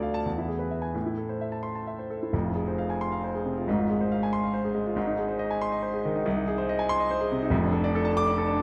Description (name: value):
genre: classical, virtuoso piano study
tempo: 86-96 BPM (dotted quarters)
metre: 6/8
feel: rubato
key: F minor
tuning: A4 = 440 Hz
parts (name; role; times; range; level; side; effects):
- warm concert grand piano; solo; 0.0-8.6 s; F1 to D6; -28 LUFS; equal; none
room: wet recital hall reverb, RT60 1.5 s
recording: none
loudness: -28 LUFS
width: mono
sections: 0.0-2.3 A section; 2.3-8.6 B section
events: none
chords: 0.3 E; 1.0 Am; 2.3 Fm; 3.7 Fm/Ab; 5.0 Ab; 6.3 Ab/C; 7.5 Dm/F